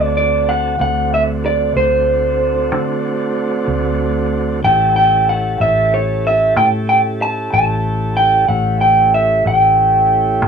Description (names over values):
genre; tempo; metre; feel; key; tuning
slow blues; 62 BPM (dotted quarters); 12/8; straight; unclear; A4 = 436 Hz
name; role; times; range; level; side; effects
electric guitar through a small old amp; melody; 0.0-10.5 s; C5 to A5; -13 LUFS; right 1 dB; cassette tape
tonewheel organ; sustained chords; 0.0-10.5 s; A3 to A4; -22 LUFS; right 3 dB; slow rotary speaker, cassette tape
vintage muted fingered electric bass; bass; 0.0-10.5 s; A1 to D3; -20 LUFS; left 1 dB; none
room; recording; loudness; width
light reverb; home recording on cassette, small room ambience; -12 LUFS; side -6 dB against mid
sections
0.0-10.5 A section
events
none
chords
0.0 D7; 4.6 A7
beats
| 0.79 1.75 2.72 3.68 | 4.64 5.61 6.57 7.53 | 8.50 9.46 10.42